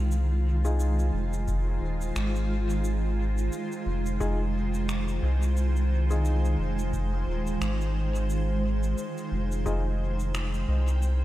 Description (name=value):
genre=ambient dub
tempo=88 BPM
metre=4/4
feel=swing 57% on 16ths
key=F minor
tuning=A4 = 440 Hz
part: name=granular cloud pad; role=sustained chords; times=0.0-11.2 s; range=Eb3 to G5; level=-32 LUFS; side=right 2 dB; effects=built-in reverb
part: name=round analog bass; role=bass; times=0.0-11.2 s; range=Eb1 to C2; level=-26 LUFS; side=equal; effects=none
part: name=electronic shaker and finger snaps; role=drums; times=0.1-11.2 s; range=none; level=-41 LUFS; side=equal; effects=overdrive, dub echo
part: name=dark upright piano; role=stabs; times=0.6-9.8 s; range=Eb4 to Ab4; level=-38 LUFS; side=left 3 dB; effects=dub echo
part: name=electronic kick drum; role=drums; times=1.5-9.8 s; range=none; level=-34 LUFS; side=equal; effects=none
room=light reverb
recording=none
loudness=-25 LUFS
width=side -15 dB against mid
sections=0.0-11.2 A section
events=none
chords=0.0 Fm7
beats=| 0.12 0.80 1.48 2.16 | 2.84 3.52 4.21 4.89 | 5.57 6.25 6.93 7.62 | 8.30 8.98 9.66 10.34 | 11.03